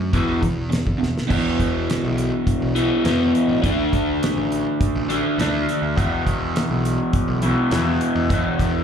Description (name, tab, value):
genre	classic rock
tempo	103 BPM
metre	4/4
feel	straight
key	unclear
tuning	A4 = 444 Hz
part	crunchy overdriven guitar	riff	0.0-8.8 s	E2 to D4	-20 LUFS	equal	phaser, slapback echo
part	fuzz picked electric bass	bass	0.0-8.8 s	A1 to F#2	-24 LUFS	equal	overdrive
part	damped 70s drum kit	drums	0.1-8.7 s	crash cymbal, hi-hat, kick drum, snare drum	-23 LUFS	equal	none
room	light reverb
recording	live gig heard through the venue's PA, club reverb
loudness	-18 LUFS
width	side -8 dB against mid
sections	0.0-1.3 A section; 1.3-8.8 B section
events	drum fill 1.0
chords	0.1 E5; 3.6 D5; 6.0 E5